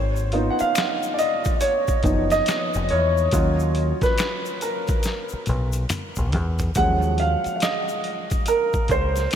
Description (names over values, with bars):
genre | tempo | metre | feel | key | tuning
R&B, neo-soul | 70 BPM | 4/4 | swing 62% on 16ths | Eb minor | A4 = 440 Hz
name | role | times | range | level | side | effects
warm grand piano | accompaniment | 0.0-9.4 s | F3 to Gb5 | -22 LUFS | right 1 dB | wide subtle chorus
deep dub picked electric bass | bass | 0.0-9.3 s | F1 to Fb2 | -23 LUFS | equal | none
egg shaker and finger snaps | percussion | 0.2-9.4 s | none | -35 LUFS | left 6 dB | none
boom bap sampler-style drum kit | drums | 0.3-9.4 s | hi-hat, kick drum, snare drum, toms | -26 LUFS | equal | none
room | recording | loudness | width
moderate huge ambient reverb, RT60 4.5 s | dreamy mix soaked in reverb | -20 LUFS | side -9 dB against mid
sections
0.0-6.8 A section; 6.8-9.4 B section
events
grand piano solo 0.0-6.8, 6.8-9.4; drum fill 5.0-6.8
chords
0.0 Fm7b5; 3.3 Ebm7; 6.8 Ebm11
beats
0.76 1.61 2.47 | 3.33 4.19 5.04 5.90 | 6.76 7.61 8.47 9.33